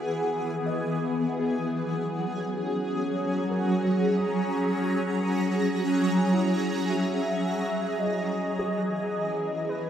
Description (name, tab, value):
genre	ambient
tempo	53 BPM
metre	3/4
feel	straight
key	F# mixolydian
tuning	A4 = 441 Hz
part	warm velvety synth lead	melody	0.0-0.1, 6.9-9.9 s	B4 to E5	-33 LUFS	equal	chorus, diffuse ambient delay
part	shimmering ambient pad	sustained chords	0.0-9.9 s	E3 to A#5	-25 LUFS	equal	chorus, built-in reverb, phaser
part	felt-muted upright piano	arpeggios	0.0-9.9 s	E4 to D#6	-40 LUFS	right 1 dB	none
room	wet concert hall reverb, RT60 2.1 s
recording	dark, warm production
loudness	-24 LUFS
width	side -9 dB against mid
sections	0.0-9.9 A section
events	fade-in on soft synth lead 0.0-9.9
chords	0.0 Emaj7; 1.2 F#add9; 8.0 Emaj7